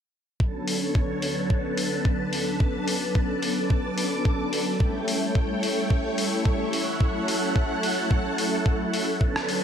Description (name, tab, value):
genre	nu-disco, nu disco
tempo	109 BPM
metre	4/4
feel	swing 54% on 16ths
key	B minor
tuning	A4 = 440 Hz
part	warm analog pad	accompaniment	0.4-9.6 s	F#3 to A4	-27 LUFS	equal	chorus, sidechain pumping, ping-pong delay
part	string machine, full ensemble	sustained chords	0.4-9.6 s	D3 to D6	-30 LUFS	equal	phaser, ensemble chorus, sidechain pumping
part	electronic kick drum	drums	0.4-9.3 s	none	-23 LUFS	equal	small room ambience
part	dusty soul sampler-style drum kit	drums	0.7-9.6 s	hi-hat, rim click	-30 LUFS	left 2 dB	small room ambience, gated reverb
room	moderate lush hall reverb, RT60 1.9 s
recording	bright 1980s-style digital production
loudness	-23 LUFS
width	side -8 dB against mid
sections	0.4-9.6 A section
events	filter sweep on analog synth pad 0.4-9.6; filter sweep on string machine 0.4-9.6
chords	0.4 Bm9; 4.8 A7; 6.7 F#m7